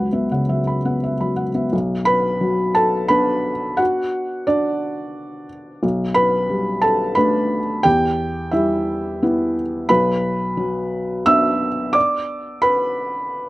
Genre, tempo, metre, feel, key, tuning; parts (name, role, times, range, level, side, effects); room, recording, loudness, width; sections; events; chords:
neoclassical minimalist piano; 88 BPM; 3/4; rubato; B minor; A4 = 440 Hz
felt-muted upright piano; solo; 0.0-13.5 s; B1 to E6; -17 LUFS; equal
light reverb; recorded outdoors, with no room sound; -17 LUFS; side -18 dB against mid
0.0-1.7 A section; 1.7-13.5 B section
0.0 F#7sus4/C#; 1.7 Bm; 5.8 Gadd9/B; 7.9 Em; 9.9 Bm